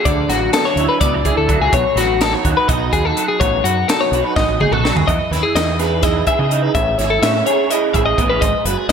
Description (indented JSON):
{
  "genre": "math rock and midwest emo",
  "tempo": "251 BPM (eighths)",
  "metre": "7/8",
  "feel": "straight",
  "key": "E major",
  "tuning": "A4 = 440 Hz",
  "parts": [
    { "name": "electric guitar through a small old amp", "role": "accompaniment", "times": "0.0-8.9 s", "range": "G#2 to G#4", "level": "-20 LUFS", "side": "right 9 dB", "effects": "ensemble chorus" },
    { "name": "twelve-string electric guitar", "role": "arpeggios", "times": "0.0-8.9 s", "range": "F#4 to E5", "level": "-17 LUFS", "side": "left 5 dB", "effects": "none" },
    { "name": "growling fingered electric bass", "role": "bass", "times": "0.1-8.9 s", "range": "F#1 to C#3", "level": "-21 LUFS", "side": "right 1 dB", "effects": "overdrive" },
    { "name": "crisp fusion drum kit", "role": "drums", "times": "0.1-8.9 s", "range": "hi-hat, kick drum, snare drum, toms", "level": "-20 LUFS", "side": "equal", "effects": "gated reverb" }
  ],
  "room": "moderate lush hall reverb, RT60 2.3 s",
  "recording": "bright 1980s-style digital production",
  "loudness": "-13 LUFS",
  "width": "side -7 dB against mid",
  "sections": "0.0-5.1 A section; 5.1-8.9 B section",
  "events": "drum fill 4.4-5.1",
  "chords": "0.1 Dadd9; 1.7 B7; 5.1 Emaj7; 6.8 Amaj7; 8.4 G#m7"
}